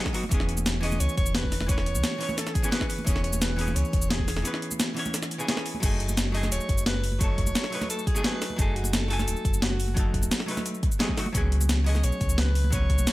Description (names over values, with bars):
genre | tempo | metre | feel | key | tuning
liquid drum and bass | 174 BPM | 4/4 | straight | F# dorian | A4 = 440 Hz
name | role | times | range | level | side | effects
archtop guitar, miked and amplified | accompaniment | 0.0-13.1 s | E3 to G#5 | -32 LUFS | equal | dub echo
breakbeat sampler-style drum kit | drums | 0.1-13.1 s | crash cymbal, hi-hat, shaker, snare drum | -29 LUFS | equal | overdrive
electronic kick drum | drums | 0.1-13.0 s | none | -27 LUFS | equal | none
congas | percussion | 0.2-13.1 s | none | -38 LUFS | right 2 dB | none
sub bass with octave | bass | 0.3-13.1 s | D#1 to C#2 | -26 LUFS | equal | none
clear alto saxophone | melody | 0.8-13.1 s | F#4 to D#5 | -35 LUFS | equal | dub echo
room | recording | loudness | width
little or no reverb | none | -23 LUFS | side -18 dB against mid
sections
0.0-5.8 A section; 5.8-13.1 A section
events
drop 0.0-5.8, 5.8-13.1; break 4.4-5.8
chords
0.3 E6; 5.8 F#m69; 11.3 C#7sus4